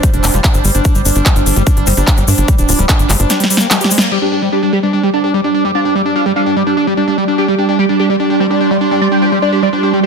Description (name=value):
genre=psychedelic trance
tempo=147 BPM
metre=4/4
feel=straight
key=unclear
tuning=A4 = 439 Hz
part: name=resonant blip pluck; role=second line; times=0.0-3.6, 8.4-10.1 s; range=F3 to C4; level=-29 LUFS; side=right 3 dB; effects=none
part: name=overtone-sweeping drone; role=sustained chords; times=0.0-10.1 s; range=G3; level=-21 LUFS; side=right 1 dB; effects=chorus, built-in reverb, sidechain pumping
part: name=screaming distorted acid line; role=riff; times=0.0-10.1 s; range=G3 to G4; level=-16 LUFS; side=right 2 dB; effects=distortion, chorus, auto-pan, sidechain pumping, ping-pong delay
part: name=big-room dance drum kit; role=drums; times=0.0-4.2 s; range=crash cymbal, handclaps, hi-hat, snare drum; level=-15 LUFS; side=left 1 dB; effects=overdrive, low-pass filter on snare, low-pass filter on hats, low-pass filter on cymbals
part: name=electronic kick drum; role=drums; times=0.0-3.0 s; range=none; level=-12 LUFS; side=equal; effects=none
part: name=tube shaker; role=percussion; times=0.0-4.1 s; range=none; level=-22 LUFS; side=left 7 dB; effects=none
part: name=ethereal airy pad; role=texture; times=0.0-10.1 s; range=G3 to D6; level=-18 LUFS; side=right 2 dB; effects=ensemble chorus, built-in reverb, sidechain pumping
part: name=tight sequencer bass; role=bass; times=0.1-3.3 s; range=D1 to G2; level=-14 LUFS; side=equal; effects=none
part: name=overdriven synth lead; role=melody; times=4.1-10.1 s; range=G3 to D5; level=-17 LUFS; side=equal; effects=phaser, sidechain pumping, ping-pong delay
room=light reverb, digital ambience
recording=dense, heavily limited modern master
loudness=-10 LUFS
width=side -5 dB against mid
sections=0.0-4.1 A section; 4.1-10.1 B section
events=kick drops out 3.3-4.1; drum fill 3.3-4.1; band accent 4.0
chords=0.0 G5